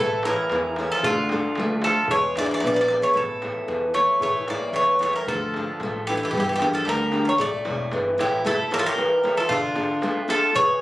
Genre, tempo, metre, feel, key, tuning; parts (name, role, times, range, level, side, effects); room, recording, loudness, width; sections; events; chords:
greek folk, Greek bouzouki band; 114 BPM; 2/4; straight; A4 = 439 Hz
Greek bouzouki; melody; 0.0-10.8 s; F4 to D5; -23 LUFS; equal
Greek bouzouki; second line; 0.0-10.8 s; D3 to G#4; -30 LUFS; right 1 dB
picked steel-string acoustic guitar; accompaniment; 0.0-10.8 s; D3 to C#5; -25 LUFS; equal
upright bass; bass; 0.0-8.4 s; E1 to E2; -33 LUFS; equal
darbuka; percussion; 0.1-10.7 s; -31 LUFS; equal
moderate small room reverb, RT60 0.6 s; recorded on a phone in the room, studio ambience, compression; -20 LUFS; side -17 dB against mid
0.0-8.4 A section; 8.4-10.8 A section
0.0 A; 1.0 Dm; 2.1 E7; 3.2 A; 5.3 Dm; 6.3 Gm; 7.4 A; 9.5 Dm